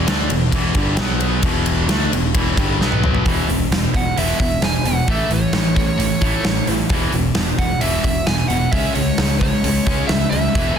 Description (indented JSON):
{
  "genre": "hard rock",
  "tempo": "132 BPM",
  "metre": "4/4",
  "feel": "straight",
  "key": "E mixolydian",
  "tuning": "A4 = 439 Hz",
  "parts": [
    { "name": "high-gain distorted guitar", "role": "riff", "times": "0.0-10.8 s", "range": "E2 to D4", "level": "-23 LUFS", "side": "left 11 dB", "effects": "distortion" },
    { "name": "tight distorted guitar", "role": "riff", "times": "0.0-10.8 s", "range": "E2 to D4", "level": "-23 LUFS", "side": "right 9 dB", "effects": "distortion" },
    { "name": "overdriven picked electric bass", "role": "bass", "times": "0.0-10.7 s", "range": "E1 to D2", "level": "-22 LUFS", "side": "equal", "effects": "none" },
    { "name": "huge arena drum kit", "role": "drums", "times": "0.1-10.7 s", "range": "hi-hat, kick drum, ride cymbal, snare drum, toms", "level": "-20 LUFS", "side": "equal", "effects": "none" },
    { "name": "bluesy overdriven lead guitar", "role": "melody", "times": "4.0-10.8 s", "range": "C#5 to G#5", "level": "-24 LUFS", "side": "right 3 dB", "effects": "distortion, digital delay" }
  ],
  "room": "light reverb, small room reverb",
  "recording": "dense, heavily limited modern master",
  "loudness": "-15 LUFS",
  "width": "side -8 dB against mid",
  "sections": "0.0-3.3 A section; 3.3-10.8 B section",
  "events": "drum fill 2.8-3.3",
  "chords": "0.0 E5; 1.0 B5; 1.4 E5; 2.8 B5; 3.3 E5; 5.1 A; 6.9 E5; 8.7 C#5"
}